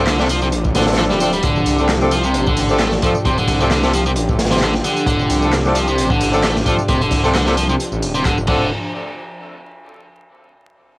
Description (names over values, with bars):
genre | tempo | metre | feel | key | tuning
breakbeat, breaks | 132 BPM | 4/4 | swing 54% on 16ths | D minor pentatonic | A4 = 441 Hz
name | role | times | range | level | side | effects
lush unison pad | sustained chords | 0.0-8.7 s | F3 to D5 | -24 LUFS | equal | chorus, sidechain pumping, cassette tape
biting overdriven guitar | riff | 0.0-8.7 s | C3 to C4 | -19 LUFS | equal | vintage 12-bit sampler grit, cassette tape, tape echo
clear horn section | stabs | 0.0-8.7 s | A3 to A4 | -22 LUFS | equal | vintage 12-bit sampler grit, cassette tape, tape echo
detuned saw bass | bass | 0.0-8.7 s | D1 to C2 | -21 LUFS | equal | none
crunchy breakbeat drum kit | drums | 0.1-8.6 s | crash cymbal, hi-hat, kick drum, snare drum | -20 LUFS | equal | none
punchy analog drum machine | drums | 0.1-8.5 s | handclaps, hi-hat, tambourine | -27 LUFS | equal | none
room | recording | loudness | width
light reverb, small room ambience | home recording on cassette, vinyl crackle | -14 LUFS | side -23 dB against mid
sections
0.0-8.7 A section; 8.7-10.5 B section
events
drop 0.0-8.7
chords
0.0 Dm7; 8.7 N.C.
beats
0.07 0.53 0.98 | 1.43 1.89 2.34 2.80 | 3.25 3.71 4.16 4.62 | 5.07 5.53 5.98 6.43 | 6.89 7.34 7.80 8.25